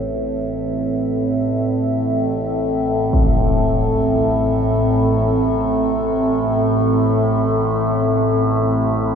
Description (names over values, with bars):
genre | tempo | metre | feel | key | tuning
dark ambient drone | free time | none | none | unclear | A4 = 440 Hz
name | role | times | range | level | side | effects
dark analog pad | sustained chords | 0.0-9.2 s | C4 to E5 | -19 LUFS | equal | chorus
overtone-sweeping drone | drone | 0.0-9.2 s | A1 to A2 | -19 LUFS | equal | chorus, built-in reverb
impact | percussion | 3.1-3.4 s | none | -21 LUFS | equal | low-pass filter on sfx
room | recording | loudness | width
wet huge ambient reverb, RT60 7.2 s | in a vast, echoing space | -16 LUFS | side -7 dB against mid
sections
0.0-9.2 A section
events
none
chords
0.0 Am